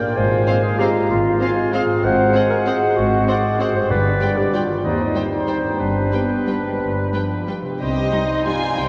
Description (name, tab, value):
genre	classical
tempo	172-210 BPM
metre	3/4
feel	rubato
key	C minor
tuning	A4 = 442 Hz
part	warm oboe	second line	0.0-8.9 s	B4 to Bb5	-31 LUFS	equal	none
part	mellow bassoon	accompaniment	0.0-8.9 s	G3 to Bb3	-30 LUFS	equal	none
part	mellow French horn section	sustained chords	0.0-8.6 s	F3 to Gb4	-29 LUFS	equal	none
part	concert harp	arpeggios	0.0-8.9 s	G2 to D5	-31 LUFS	equal	none
part	mellow clarinet	second line	0.2-8.9 s	D4 to C5	-25 LUFS	equal	none
part	small flute group	second line	0.2-8.9 s	B4 to C6	-29 LUFS	equal	none
part	rich chamber double bass section	bass	0.2-8.9 s	G1 to Eb2	-28 LUFS	equal	none
part	rich studio cello section	bass	0.2-8.9 s	Eb2 to C3	-29 LUFS	equal	none
part	rich studio violin section	melody	0.5-8.9 s	Eb5 to Ab5	-32 LUFS	equal	none
part	rich studio violin section	second line	0.5-8.9 s	Eb4 to D5	-34 LUFS	equal	none
part	rich studio viola section	accompaniment	0.5-8.5 s	G3 to Eb4	-33 LUFS	equal	none
part	timpani	percussion	3.9-4.3 s	none	barely audible	none	none
room	wet cathedral reverb, RT60 6.0 s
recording	worn, warbling old tape, cassette tape, warbly pitch drift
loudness	-19 LUFS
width	mono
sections	0.0-7.8 A section; 7.8-8.9 B section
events	none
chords	0.2 Fm/Ab; 2.0 Ab7; 3.9 G; 4.8 Cm/Eb; 5.8 G; 7.8 Cm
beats	| 0.17 0.47 0.80 | 1.10 1.40 1.73 | 2.04 2.34 2.66 | 2.96 3.27 3.60 | 3.90 4.21 4.53 | 4.84 5.15 5.47 | 5.80 6.13 6.47 | 6.80 7.13 7.47 | 7.80 8.13 8.47 | 8.79